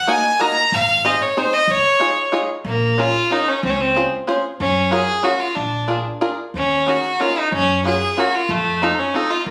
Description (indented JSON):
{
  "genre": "musette waltz",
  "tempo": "186 BPM",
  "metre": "3/4",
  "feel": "straight",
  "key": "Bb minor",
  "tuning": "A4 = 438 Hz",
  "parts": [
    { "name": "bright violin", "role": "melody", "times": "0.0-9.5 s", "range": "A3 to Bb5", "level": "-20 LUFS", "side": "equal", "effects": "none" },
    { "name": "bluegrass banjo", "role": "accompaniment", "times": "0.1-9.3 s", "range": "Bb3 to Eb5", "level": "-23 LUFS", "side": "equal", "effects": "none" },
    { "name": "upright bass", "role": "bass", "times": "0.7-9.5 s", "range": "Ab1 to Gb2", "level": "-28 LUFS", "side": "equal", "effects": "none" }
  ],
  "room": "light reverb",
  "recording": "recorded on a phone in the room, studio reverb, compression",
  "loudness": "-18 LUFS",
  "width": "mono",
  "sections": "0.0-2.7 A section; 2.7-9.5 B section",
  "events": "none",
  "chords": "0.0 Ebm; 0.7 Ab; 1.7 Dbadd9; 2.7 Bbm7; 3.6 Dbmaj7; 4.6 Gbmaj7; 5.6 Bb7; 6.5 Eb7sus4; 7.5 Gbmaj7; 8.5 F7"
}